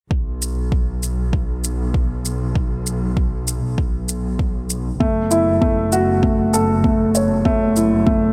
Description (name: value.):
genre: piano and strings electronica.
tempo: 98 BPM.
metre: 4/4.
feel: straight.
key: unclear.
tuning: A4 = 440 Hz.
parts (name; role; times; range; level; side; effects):
clear symphonic double bass section; bass; 0.1-8.3 s; F#1 to B1; -25 LUFS; equal; sidechain pumping.
electronic kick drum; drums; 0.1-8.2 s; none; -23 LUFS; equal; none.
shaker; drums; 0.4-7.9 s; none; -26 LUFS; equal; none.
dark upright piano; riff; 5.0-8.3 s; A3 to C#5; -18 LUFS; equal; digital delay.
room: light reverb.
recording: none.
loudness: -19 LUFS.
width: mono.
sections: 0.1-8.3 A section.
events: none.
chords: 0.1 N.C.; 5.0 F#m7.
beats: | 0.11 0.72 1.33 1.95 | 2.56 3.17 3.78 4.39 | 5.01 5.62 6.23 6.84 | 7.46 8.07.